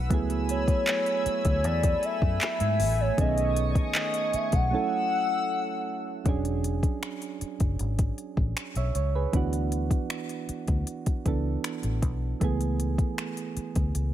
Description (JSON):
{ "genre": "contemporary R&B", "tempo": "78 BPM", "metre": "4/4", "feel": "straight", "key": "unclear", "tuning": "A4 = 440 Hz", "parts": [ { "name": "soft electric-piano-like synth keys", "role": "accompaniment", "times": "0.0-14.1 s", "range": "D#3 to E5", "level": "-32 LUFS", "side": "right 7 dB", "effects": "chorus" }, { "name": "chorused pulse-width pad", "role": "sustained chords", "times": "0.0-6.2 s", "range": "A3 to E6", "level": "-35 LUFS", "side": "left 1 dB", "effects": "none" }, { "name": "vintage muted fingered electric bass", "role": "bass", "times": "0.0-14.1 s", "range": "E1 to G#2", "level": "-28 LUFS", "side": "left 1 dB", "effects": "none" }, { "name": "smooth R&B drum kit", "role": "drums", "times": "0.1-14.1 s", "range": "finger snaps, handclaps, hi-hat, kick drum", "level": "-28 LUFS", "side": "left 1 dB", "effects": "overdrive" }, { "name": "gliding portamento lead", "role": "melody", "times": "0.5-5.9 s", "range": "C#5 to F#5", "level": "-28 LUFS", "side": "left 1 dB", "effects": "chorus, ping-pong delay" } ], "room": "light reverb, digital ambience", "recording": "none", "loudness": "-25 LUFS", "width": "side -12 dB against mid", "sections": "0.0-6.3 A section; 6.3-14.1 B section", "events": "break 4.7-6.3", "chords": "0.1 F#m11/C#; 3.2 B13; 4.7 F#m7; 6.3 E13; 9.3 D69; 12.4 Amaj9", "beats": "| 0.10 0.87 1.64 2.41 | 3.18 3.95 4.72 5.49 | 6.26 7.03 7.79 8.56 | 9.33 10.10 10.87 11.64 | 12.41 13.18 13.95" }